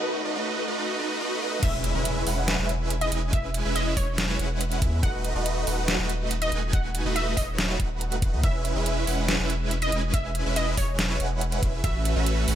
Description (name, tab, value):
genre	future bass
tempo	141 BPM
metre	4/4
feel	half-time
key	E major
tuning	A4 = 441 Hz
part	felt-muted upright piano	accompaniment	0.0-1.6 s	D#3 to F#4	-40 LUFS	left 4 dB	none
part	supersaw chords	riff	0.0-12.6 s	G#3 to G#5	-28 LUFS	right 1 dB	phaser, cassette tape, sidechain pumping
part	wide unison pluck	melody	1.6-12.0 s	C#5 to F#5	-32 LUFS	equal	sidechain pumping, tape echo
part	saturated sub bass	bass	1.6-12.6 s	D#1 to E2	-28 LUFS	equal	sidechain pumping
part	dubstep drum kit	drums	1.6-12.6 s	crash cymbal, hi-hat, snare drum	-29 LUFS	equal	high-pass filter on snare, high-pass filter on hats, high-pass filter on cymbals, high-pass filter on room
part	electronic kick drum	drums	1.6-11.9 s	none	-25 LUFS	equal	none
part	impact	sound effects	1.6-3.3 s	none	-36 LUFS	left 1 dB	none
room	little or no reverb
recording	high-pass filter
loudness	-23 LUFS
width	side -11 dB against mid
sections	0.0-1.6 A section; 1.6-12.6 B section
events	break 0.0-1.6; build-up 0.0-1.6; drop 1.6-12.6; impact 1.6-3.3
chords	0.0 B7/D#; 1.6 E6; 5.0 B7/D#; 8.4 E6; 11.8 A69